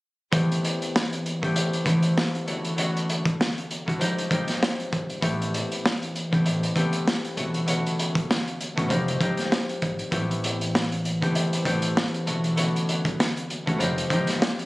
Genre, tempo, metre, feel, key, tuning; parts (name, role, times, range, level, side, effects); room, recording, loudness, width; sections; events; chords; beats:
hip hop, boom-bap hip-hop; 98 BPM; 4/4; swing 60% on 16ths; A dorian; A4 = 441 Hz
concert harp; accompaniment; 0.3-14.7 s; D3 to G4; -26 LUFS; left 1 dB; high-pass filter, low-pass filter
crunchy breakbeat drum kit; drums; 0.3-14.7 s; hi-hat, kick drum, snare drum; -26 LUFS; equal
upright bass; bass; 5.2-14.3 s; F1 to C2; -31 LUFS; equal
studio reverb; recorded on a phone in the room, club reverb, compression; -22 LUFS; side -20 dB against mid
0.3-10.1 A section; 10.1-14.7 B section
0.3 Am7; 2.5 Bm7; 4.0 Fm7; 5.2 Am7; 7.4 Bm7; 8.9 Fm7; 10.1 Am7; 12.3 Bm7; 13.8 Fm7
| 0.32 0.94 1.55 2.16 | 2.77 3.38 4.00 4.61 | 5.22 5.83 6.45 7.06 | 7.67 8.28 8.89 9.51 | 10.12 10.73 11.34 11.96 | 12.57 13.18 13.79 14.40